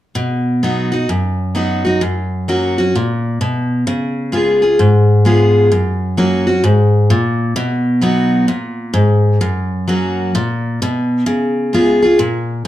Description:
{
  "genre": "country",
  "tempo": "130 BPM",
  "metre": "4/4",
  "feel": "swing 64% on 8ths",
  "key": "B major",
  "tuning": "A4 = 440 Hz",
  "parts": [
    { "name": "picked steel-string acoustic guitar", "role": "solo", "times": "0.2-12.7 s", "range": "F#2 to G#4", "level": "-13 LUFS", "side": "equal", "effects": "none" }
  ],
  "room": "moderate large studio reverb, RT60 0.8 s",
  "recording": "dark, warm production",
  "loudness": "-13 LUFS",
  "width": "side -13 dB against mid",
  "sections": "0.2-7.6 A section; 7.6-12.7 B section",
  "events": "none",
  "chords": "0.2 B; 2.0 F#; 3.9 C#7; 5.7 F#; 7.6 B; 9.4 F#; 11.3 C#7"
}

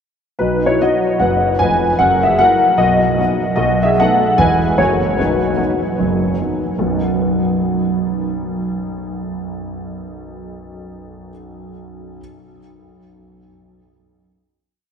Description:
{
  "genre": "jazz, stride piano",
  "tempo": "150 BPM",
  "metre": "4/4",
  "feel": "swing 64% on 8ths",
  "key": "B major",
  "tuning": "A4 = 437 Hz",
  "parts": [
    { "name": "dark concert grand piano", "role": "solo", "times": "0.4-12.2 s", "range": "E1 to G#5", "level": "-15 LUFS", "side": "equal", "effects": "analog chorus, diffuse ambient delay" }
  ],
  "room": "wet cathedral reverb, RT60 6.4 s",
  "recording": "dreamy mix soaked in reverb",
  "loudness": "-14 LUFS",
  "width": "side -7 dB against mid",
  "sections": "0.4-6.8 A section; 6.8-10.0 final chord",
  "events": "none",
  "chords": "0.4 B; 2.0 F#7; 2.8 B; 3.6 B7; 4.4 E; 4.8 F#; 5.2 B"
}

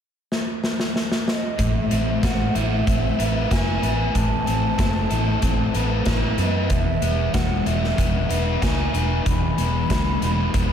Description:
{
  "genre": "rock, shoegaze and dream pop",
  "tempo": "94 BPM",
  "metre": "4/4",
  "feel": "straight",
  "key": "unclear",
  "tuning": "A4 = 440 Hz",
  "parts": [
    { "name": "big rock drum kit", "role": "drums", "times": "0.3-10.7 s", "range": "hi-hat, kick drum, snare drum", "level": "-24 LUFS", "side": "equal", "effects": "none" },
    { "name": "mellow hollow concert flute", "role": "melody", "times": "1.3-10.7 s", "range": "D#5 to B5", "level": "-28 LUFS", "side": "right 2 dB", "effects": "analog delay" },
    { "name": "overdriven semi-hollow guitar", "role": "riff", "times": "1.6-10.7 s", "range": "E2 to B4", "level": "-25 LUFS", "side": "left 7 dB", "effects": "wide subtle chorus" },
    { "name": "overdriven semi-hollow guitar", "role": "riff", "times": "1.6-10.7 s", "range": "E2 to B4", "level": "-28 LUFS", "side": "right 6 dB", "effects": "reverse reverb" },
    { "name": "vintage muted fingered electric bass", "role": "bass", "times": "1.6-10.7 s", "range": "E1 to F#2", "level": "-24 LUFS", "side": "equal", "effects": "none" }
  ],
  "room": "moderate cathedral reverb, RT60 5.4 s",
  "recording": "dreamy mix soaked in reverb",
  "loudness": "-19 LUFS",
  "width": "side -8 dB against mid",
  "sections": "0.0-1.6 A section; 1.6-10.7 B section",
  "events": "drum fill 0.3-1.6",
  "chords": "0.0 N.C.; 1.6 Amadd9; 6.7 Emaj7"
}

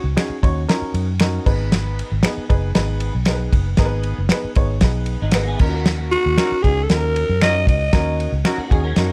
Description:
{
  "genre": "uptempo 1960s-style soul",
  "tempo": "116 BPM",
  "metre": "4/4",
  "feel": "straight",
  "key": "Eb minor",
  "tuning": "A4 = 437 Hz",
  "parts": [
    { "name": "growling alto saxophone", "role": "melody", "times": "0.0-0.1, 6.1-8.4 s", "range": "Gb4 to Eb5", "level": "-22 LUFS", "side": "equal", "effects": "plate reverb" },
    { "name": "vintage muted fingered electric bass", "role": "bass", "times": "0.0-9.1 s", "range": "Gb1 to Gb2", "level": "-24 LUFS", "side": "equal", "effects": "none" },
    { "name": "dark upright piano", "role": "accompaniment", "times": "0.2-9.1 s", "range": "Cb4 to Db5", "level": "-28 LUFS", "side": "equal", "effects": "plate reverb" },
    { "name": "warm soul drum kit", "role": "drums", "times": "0.2-9.1 s", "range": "crash cymbal, kick drum, ride cymbal, snare drum", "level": "-20 LUFS", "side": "equal", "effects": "none" },
    { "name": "finger snap", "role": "percussion", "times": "0.2-8.6 s", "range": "none", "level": "-28 LUFS", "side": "equal", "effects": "none" },
    { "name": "electric guitar through a small old amp", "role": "riff", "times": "5.2-9.1 s", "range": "Gb3 to Bb4", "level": "-32 LUFS", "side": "equal", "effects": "ensemble chorus" },
    { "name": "electric guitar through a small old amp", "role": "stabs", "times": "6.4-8.6 s", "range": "Db4 to Bb4", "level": "-30 LUFS", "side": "equal", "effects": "plate reverb" }
  ],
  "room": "light reverb",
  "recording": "none",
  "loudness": "-19 LUFS",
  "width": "mono",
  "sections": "0.0-9.1 A section",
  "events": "none",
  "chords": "0.0 Ebm7; 1.5 Abm; 5.6 Ebm7"
}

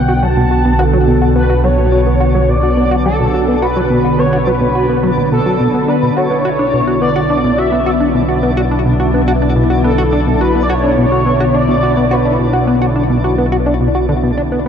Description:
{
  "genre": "ambient, sequencer-driven space music",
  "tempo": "106 BPM",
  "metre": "4/4",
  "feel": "straight",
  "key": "B minor",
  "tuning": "A4 = 440 Hz",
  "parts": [
    { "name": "expressive synth lead", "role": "melody", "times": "0.0-12.5 s", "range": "A4 to A5", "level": "-18 LUFS", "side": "equal", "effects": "ensemble chorus, ping-pong delay" },
    { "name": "phased analog pad", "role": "sustained chords", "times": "0.0-14.7 s", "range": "D3 to F#4", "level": "-17 LUFS", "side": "equal", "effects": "phaser, chorus" },
    { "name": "analog drone", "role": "bass", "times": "0.0-14.7 s", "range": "B1", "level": "-17 LUFS", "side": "equal", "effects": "chorus" },
    { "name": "twinkling granular texture", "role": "texture", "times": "0.0-14.7 s", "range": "D4", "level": "-24 LUFS", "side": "right 1 dB", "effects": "built-in reverb" },
    { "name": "plucky analog bass", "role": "riff", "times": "0.1-14.7 s", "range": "B2 to F#4", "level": "-16 LUFS", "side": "left 1 dB", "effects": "analog chorus, ping-pong delay" }
  ],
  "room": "wet huge ambient reverb, RT60 7.7 s",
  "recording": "dark, warm production",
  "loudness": "-11 LUFS",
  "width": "side -8 dB against mid",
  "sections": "0.0-14.7 A section",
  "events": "none",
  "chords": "0.0 Bm"
}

